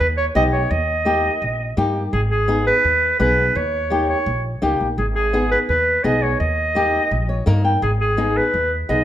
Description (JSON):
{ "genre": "latin", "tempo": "169 BPM", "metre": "4/4", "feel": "straight", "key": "G# harmonic minor", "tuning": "A4 = 444 Hz", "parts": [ { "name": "clear clarinet", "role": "melody", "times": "0.0-9.0 s", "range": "G#4 to D#5", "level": "-19 LUFS", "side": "right 1 dB", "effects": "none" }, { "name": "upright bass", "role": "bass", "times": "0.0-9.0 s", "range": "G#1 to G2", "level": "-22 LUFS", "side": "equal", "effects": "none" }, { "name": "flamenco guitar", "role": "accompaniment", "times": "0.3-9.0 s", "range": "A#3 to G5", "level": "-22 LUFS", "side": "left 2 dB", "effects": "none" } ], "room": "wet large studio reverb, RT60 1.3 s", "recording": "none", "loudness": "-16 LUFS", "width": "side -12 dB against mid", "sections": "0.0-9.0 A section", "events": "nylon-string guitar fill 7.1-7.8", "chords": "0.0 G#m (rootless); 0.7 D#; 2.1 G#m; 3.6 D#7; 5.0 G#m; 6.4 D#; 7.8 G#m" }